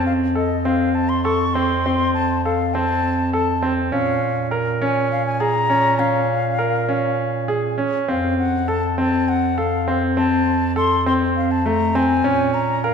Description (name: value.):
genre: contemporary instrumental, chamber music in an uneven meter.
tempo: 202 BPM (eighths).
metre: 7/8.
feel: straight.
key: unclear.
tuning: A4 = 440 Hz.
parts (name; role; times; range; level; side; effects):
wooden flute; melody; 0.0-12.9 s; Eb5 to Db6; -22 LUFS; left 4 dB; none.
bright concert grand piano; arpeggios; 0.0-12.9 s; A3 to Bb4; -20 LUFS; right 1 dB; none.
mellow bass clarinet; bass; 0.0-12.9 s; F2 to Bb2; -24 LUFS; equal; none.
room: wet concert hall reverb, RT60 1.8 s.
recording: recorded in a church or concert hall.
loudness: -17 LUFS.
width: side -6 dB against mid.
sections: 0.0-12.9 A section.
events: none.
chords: 0.0 F; 3.9 Bbm7; 8.1 F; 12.2 Bbm7.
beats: 0.06 0.36 0.66 0.96 1.25 1.55 | 1.85 2.15 2.45 2.74 3.04 3.33 3.63 | 3.93 4.22 4.52 4.81 5.11 5.40 5.70 | 5.99 6.29 6.58 6.88 7.18 7.48 7.78 | 8.08 8.38 8.68 8.98 9.28 9.58 9.88 | 10.18 10.47 10.77 11.07 11.36 11.66 11.95 | 12.25 12.54 12.84.